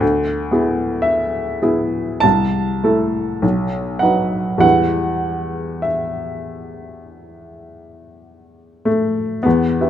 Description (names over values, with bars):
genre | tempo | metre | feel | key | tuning
classical, romantic nocturne for solo piano | 48-59 BPM | 4/4 | rubato | E minor | A4 = 440 Hz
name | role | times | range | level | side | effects
clear upright piano | solo | 0.0-9.9 s | B1 to A5 | -16 LUFS | equal | none
room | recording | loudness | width
light reverb | close, detailed microphones | -16 LUFS | side -10 dB against mid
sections
0.0-9.5 A section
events
none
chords
0.0 E7/D; 2.2 Am/C; 3.4 B7; 4.6 Em